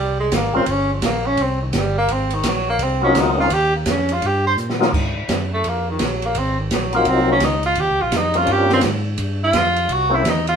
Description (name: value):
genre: soul jazz organ trio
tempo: 169 BPM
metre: 4/4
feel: swing 63% on 8ths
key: Eb mixolydian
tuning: A4 = 440 Hz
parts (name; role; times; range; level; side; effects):
- clear tenor saxophone; melody; 0.0-10.6 s; Eb3 to C5; -19 LUFS; right 1 dB; none
- tonewheel organ; bass; 0.0-10.6 s; G1 to Bb2; -24 LUFS; equal; overdrive, slow rotary speaker
- open jazz drum kit; drums; 0.3-10.5 s; crash cymbal, hi-hat, kick drum, ride cymbal, snare drum; -24 LUFS; right 2 dB; none
- percussive tonewheel organ; melody; 0.5-0.7, 3.0-10.2 s; Gb3 to G4; -19 LUFS; left 2 dB; slow rotary speaker, overdrive, chorus vibrato
room: moderate studio reverb, RT60 0.8 s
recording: band playing live in one room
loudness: -16 LUFS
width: side -7 dB against mid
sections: 0.0-10.6 A section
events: tenor saxophone solo 0.0-10.6; drum fill 4.6-4.9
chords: 0.0 Eb13 (rootless); 2.1 Ab13; 3.5 Eb69; 4.9 Ab13; 7.8 Eb13; 9.2 Fsus2; 9.9 C7b9